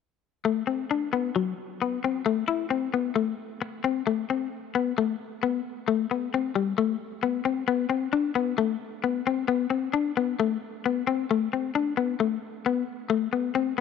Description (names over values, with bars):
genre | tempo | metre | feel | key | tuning
highlife | 133 BPM | 4/4 | straight | unclear | A4 = 440 Hz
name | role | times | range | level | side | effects
clean electric guitar | solo | 0.4-13.8 s | F#3 to E4 | -25 LUFS | left 8 dB | none
room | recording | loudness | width
light reverb | none | -25 LUFS | side -6 dB against mid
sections
0.4-4.1 A section; 4.1-11.3 B section; 11.3-13.8 C section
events
none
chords
none